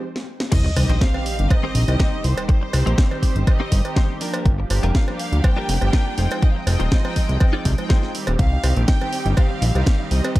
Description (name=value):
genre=nu-disco, nu disco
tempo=122 BPM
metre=4/4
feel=straight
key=C minor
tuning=A4 = 440 Hz
part: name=warm studio violin section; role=melody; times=0.0-10.4 s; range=C5 to G5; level=-31 LUFS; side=equal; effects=tape echo
part: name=mellow synth brass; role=accompaniment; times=0.0-10.4 s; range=Eb3 to G5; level=-28 LUFS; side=right 1 dB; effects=chorus
part: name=house drum kit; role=drums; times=0.2-10.4 s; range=crash cymbal, hi-hat, ride cymbal, snare drum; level=-28 LUFS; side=equal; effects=none
part: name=direct-recorded clean electric guitar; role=riff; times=0.5-8.1 s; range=C4 to D5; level=-30 LUFS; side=left 2 dB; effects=analog chorus
part: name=fat analog bass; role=bass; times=0.5-10.2 s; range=Eb1 to D2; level=-19 LUFS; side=equal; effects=none
part: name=electronic kick drum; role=drums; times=0.5-10.4 s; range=none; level=-17 LUFS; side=equal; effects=none
part: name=sub drop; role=sound effects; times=0.6-2.5 s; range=none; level=-26 LUFS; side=equal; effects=none
part: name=cowbell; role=percussion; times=0.8-10.3 s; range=none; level=-30 LUFS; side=right 1 dB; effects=none
part: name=soft round pluck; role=arpeggios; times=8.4-10.4 s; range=C4 to G4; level=-32 LUFS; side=right 2 dB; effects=chorus, sidechain pumping
room=little or no reverb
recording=none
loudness=-17 LUFS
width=side -17 dB against mid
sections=0.5-10.4 A section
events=break 0.0-0.5; drum fill 0.2-0.5; drop 0.5-10.4; impact 0.5-2.5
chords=0.0 N.C.; 0.5 Cm; 4.2 Gm7; 6.2 Fm7; 8.4 Cm